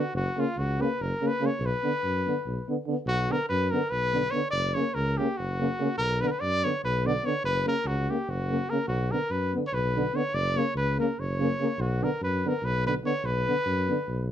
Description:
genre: balkan folk, Balkan brass band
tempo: 289 BPM (eighths)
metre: 7/8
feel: straight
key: unclear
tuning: A4 = 440 Hz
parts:
  - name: warm trumpet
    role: melody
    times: 0.0-14.3 s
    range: E#4 to D5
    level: -29 LUFS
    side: equal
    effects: none
  - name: mellow French horn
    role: accompaniment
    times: 0.0-14.3 s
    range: A#3 to B3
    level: -32 LUFS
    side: left 5 dB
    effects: none
  - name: mellow euphonium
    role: accompaniment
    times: 0.0-14.0 s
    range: C#3 to D3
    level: -32 LUFS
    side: right 5 dB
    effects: none
  - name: mellow tuba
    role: bass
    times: 0.1-14.3 s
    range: F#1 to F#2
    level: -30 LUFS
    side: equal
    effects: none
room: moderate small room reverb, RT60 0.5 s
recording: none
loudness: -25 LUFS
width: side -10 dB against mid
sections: 0.0-3.1 A section; 3.1-14.3 B section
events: none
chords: 0.1 F#; 1.6 Bm; 4.5 F#; 6.0 Bm; 7.4 F#; 8.9 Bm; 10.3 F#; 11.8 Bm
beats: | 0.15 0.36 0.57 0.78 0.98 1.19 1.40 | 1.61 1.82 2.03 2.24 2.44 2.65 2.86 | 3.07 3.28 3.48 3.69 3.90 4.11 4.32 | 4.53 4.73 4.94 5.15 5.36 5.56 5.77 | 5.98 6.19 6.39 6.60 6.81 7.02 7.22 | 7.43 7.64 7.85 8.05 8.26 8.47 8.68 | 8.88 9.09 9.30 9.51 9.71 9.92 10.13 | 10.34 10.54 10.75 10.96 11.16 11.37 11.58 | 11.78 11.99 12.20 12.40 12.61 12.82 13.02 | 13.23 13.44 13.64 13.85 14.06 14.26

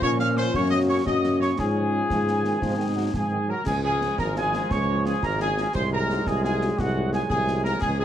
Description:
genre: military-style march for wind band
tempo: 115 BPM (dotted quarters)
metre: 6/8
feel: straight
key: Db major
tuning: A4 = 440 Hz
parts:
  - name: dark trumpet section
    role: melody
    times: 0.0-8.0 s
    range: Gb4 to F5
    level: -28 LUFS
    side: left 3 dB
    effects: analog delay
  - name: wooden piccolo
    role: second line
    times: 0.0-8.0 s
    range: Gb5 to F6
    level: -30 LUFS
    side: right 5 dB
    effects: analog delay
  - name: mellow French horn section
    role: accompaniment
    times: 0.0-8.0 s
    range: Ab3 to Gb4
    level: -29 LUFS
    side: left 5 dB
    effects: none
  - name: warm trombone section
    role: sustained chords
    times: 0.0-8.0 s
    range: Db3 to Db4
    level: -30 LUFS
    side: right 1 dB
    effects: none
  - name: warm tuba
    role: bass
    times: 0.0-8.0 s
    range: Ab1 to Bb2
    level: -26 LUFS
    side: equal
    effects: none
  - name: concert snare drum, concert bass drum and clash cymbals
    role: drums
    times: 0.0-8.0 s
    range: none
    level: -32 LUFS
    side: right 1 dB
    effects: none
room: light reverb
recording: dark, warm production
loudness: -21 LUFS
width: side -10 dB against mid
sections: 0.0-3.7 A section; 3.7-8.0 B section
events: none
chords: 0.0 Bbm; 0.5 Ebm7/Gb; 1.6 Db/Ab; 2.6 Ab; 3.7 Db; 5.8 Ab7/C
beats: 0.02 | 0.54 1.06 | 1.58 2.10 | 2.63 3.15 | 3.67 4.19 | 4.71 5.23 | 5.75 6.27 | 6.79 7.31 | 7.83

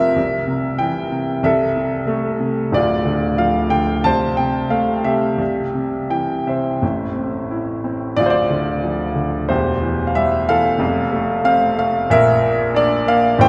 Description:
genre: classical, lyrical solo piano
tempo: 92 BPM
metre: 4/4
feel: rubato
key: unclear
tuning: A4 = 442 Hz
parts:
  - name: clear baby grand piano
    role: solo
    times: 0.0-13.5 s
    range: D1 to A5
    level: -18 LUFS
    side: equal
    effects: none
room: wet church reverb, RT60 3.9 s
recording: recorded in a church or concert hall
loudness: -18 LUFS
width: mono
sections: 0.0-13.5 A section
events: none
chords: 0.2 C7; 1.4 C6; 2.7 Dm; 4.1 C6; 5.4 C; 6.8 Am; 8.2 Dm; 9.5 C/E; 10.8 F; 12.1 Bb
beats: 0.16 0.80 | 1.44 2.09 2.74 3.39 | 4.06 4.72 5.40 6.11 | 6.82 7.51 8.19 8.85 | 9.50 10.16 10.81 11.46 | 12.10 12.75 13.39

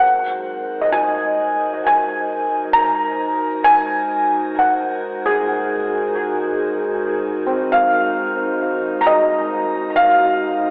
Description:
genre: ambient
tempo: 67 BPM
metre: 4/4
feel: straight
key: unclear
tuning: A4 = 440 Hz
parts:
  - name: felt-muted upright piano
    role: melody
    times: 0.0-10.7 s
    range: Eb5 to Bb5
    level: -16 LUFS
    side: equal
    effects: shimmer reverb, analog delay
  - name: warbly tape-like pad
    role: sustained chords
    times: 0.0-10.7 s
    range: Ab3 to C5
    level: -23 LUFS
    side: equal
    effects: chorus, built-in reverb, cassette tape, shimmer reverb
  - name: felt-muted upright piano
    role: arpeggios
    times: 0.0-10.7 s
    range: C4 to Bb5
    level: -22 LUFS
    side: equal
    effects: cassette tape, shimmer reverb, analog delay
room: wet spring reverb, RT60 1.6 s, small room ambience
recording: home recording on cassette, telephone sound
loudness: -15 LUFS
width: side -37 dB against mid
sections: 0.0-10.7 A section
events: fade-in on ambient pad 0.0-10.7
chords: 0.0 Ab7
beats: | 0.02 0.93 1.85 2.77 | 3.67 4.58 5.48 6.37 | 7.27 8.17 9.05 9.94

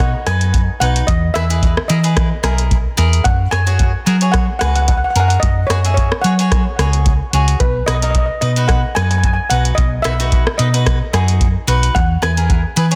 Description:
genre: calypso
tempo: 110 BPM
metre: 4/4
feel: swing 54% on 16ths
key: B major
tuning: A4 = 440 Hz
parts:
  - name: steel pan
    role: melody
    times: 0.0-13.0 s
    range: B4 to G#5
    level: -23 LUFS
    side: equal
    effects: delay
  - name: cavaquinho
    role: accompaniment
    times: 0.0-13.0 s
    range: D#4 to E5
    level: -26 LUFS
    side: equal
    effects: none
  - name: hollow-body short-scale fingered electric bass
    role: bass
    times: 0.0-13.0 s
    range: B1 to F#3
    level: -18 LUFS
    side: equal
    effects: none
  - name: soft vintage rhythm box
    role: drums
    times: 0.0-13.0 s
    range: hi-hat, kick drum, rim click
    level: -20 LUFS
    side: equal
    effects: soft clipping on snare
room: light reverb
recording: dense, heavily limited modern master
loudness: -15 LUFS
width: mono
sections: 0.0-13.0 A section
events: none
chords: 0.0 B6; 1.1 Emaj7; 3.3 F#sus2; 7.6 B; 11.9 E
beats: 0.54 | 1.08 1.62 2.17 2.71 | 3.25 3.80 4.34 4.88 | 5.42 5.97 6.51 7.05 | 7.60 8.14 8.68 9.23 | 9.77 10.31 10.86 11.40 | 11.95 12.49

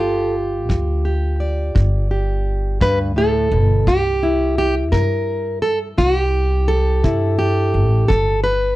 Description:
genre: acoustic country blues, solo or duo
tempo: 57 BPM (dotted quarters)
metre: 12/8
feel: straight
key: unclear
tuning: A4 = 440 Hz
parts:
  - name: fingerpicked plugged-in steel-string acoustic guitar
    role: melody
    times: 0.0-8.8 s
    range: G2 to D5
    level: -18 LUFS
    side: equal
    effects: slapback echo
  - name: upright bass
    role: bass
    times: 0.0-8.8 s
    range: G1 to G2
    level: -19 LUFS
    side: equal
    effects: none
  - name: kick drum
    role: drums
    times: 0.7-8.3 s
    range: none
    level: -18 LUFS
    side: equal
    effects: none
room: small room ambience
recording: dry, close 1970s-style studio recording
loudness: -15 LUFS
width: side -16 dB against mid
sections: 0.0-8.8 A section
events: none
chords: 0.0 G7(no3); 3.9 C; 8.1 G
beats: 0.69 1.75 2.81 | 3.87 4.93 5.99 7.04 | 8.10

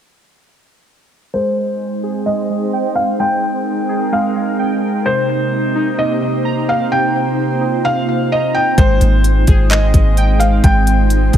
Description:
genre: hip hop, atmospheric cloud-rap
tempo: 129 BPM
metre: 4/4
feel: half-time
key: unclear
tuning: A4 = 440 Hz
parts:
  - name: felt-muted upright piano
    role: melody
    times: 1.3-11.4 s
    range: C5 to G5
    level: -18 LUFS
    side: left 1 dB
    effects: low-pass filter, ping-pong delay
  - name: ethereal airy pad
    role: sustained chords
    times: 1.7-11.4 s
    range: Ab3 to G5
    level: -19 LUFS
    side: right 2 dB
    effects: ensemble chorus, built-in reverb, sidechain pumping, low-pass filter
  - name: warbly lo-fi synth keys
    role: arpeggios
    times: 1.3-11.4 s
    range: C3 to Bb5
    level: -22 LUFS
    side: right 3 dB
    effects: chorus, low-pass filter, ping-pong delay
  - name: soft 808-style bass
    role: bass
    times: 8.8-11.4 s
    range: Ab1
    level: -12 LUFS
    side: equal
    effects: none
  - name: smooth R&B drum kit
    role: drums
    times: 8.8-11.4 s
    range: handclaps, hi-hat, kick drum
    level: -13 LUFS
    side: equal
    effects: none
room: light reverb, digital ambience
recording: none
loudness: -13 LUFS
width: side -10 dB against mid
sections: 1.3-8.8 A section; 8.8-11.4 B section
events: filter sweep 1.3-8.8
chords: 1.3 Abmaj7; 5.1 Cm7; 8.8 Abmaj7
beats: | 1.33 1.80 2.27 2.73 | 3.20 3.66 4.13 4.59 | 5.06 5.52 5.99 6.45 | 6.92 7.38 7.85 8.31 | 8.78 9.24 9.71 10.17 | 10.64 11.10

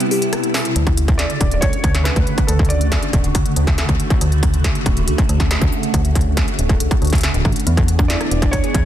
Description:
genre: IDM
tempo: 139 BPM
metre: 4/4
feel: straight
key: D lydian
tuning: A4 = 440 Hz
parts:
  - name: soft string machine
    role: sustained chords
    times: 0.0-8.8 s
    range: B2 to G#4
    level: -23 LUFS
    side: equal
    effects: phaser, ensemble chorus
  - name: harp-like synth pluck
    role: arpeggios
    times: 0.0-0.7, 7.7-8.8 s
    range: B3 to G#4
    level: -24 LUFS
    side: left 1 dB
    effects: chorus, ping-pong delay
  - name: industrial drum kit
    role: drums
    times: 0.0-8.8 s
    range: hi-hat, rim click, snare drum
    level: -24 LUFS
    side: left 1 dB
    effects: studio reverb, ping-pong delay
  - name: metallic FM bass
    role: bass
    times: 0.8-8.8 s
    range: D1 to E2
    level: -18 LUFS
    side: equal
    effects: none
  - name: electronic kick drum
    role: drums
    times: 0.9-8.8 s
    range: none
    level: -18 LUFS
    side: equal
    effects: distortion, studio reverb
  - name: felt-muted upright piano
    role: melody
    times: 1.2-3.1, 8.1-8.8 s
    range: A4 to D5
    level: -26 LUFS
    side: right 1 dB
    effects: digital delay
room: little or no reverb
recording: dense, heavily limited modern master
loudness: -14 LUFS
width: side -11 dB against mid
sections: 0.8-8.8 A section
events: break 0.0-0.8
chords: 0.0 Cmaj7; 0.8 Dmaj7; 7.7 E7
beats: 0.33 | 0.76 1.19 1.62 2.05 | 2.49 2.92 3.35 3.78 | 4.21 4.64 5.08 5.51 | 5.94 6.37 6.80 7.23 | 7.67 8.10 8.53

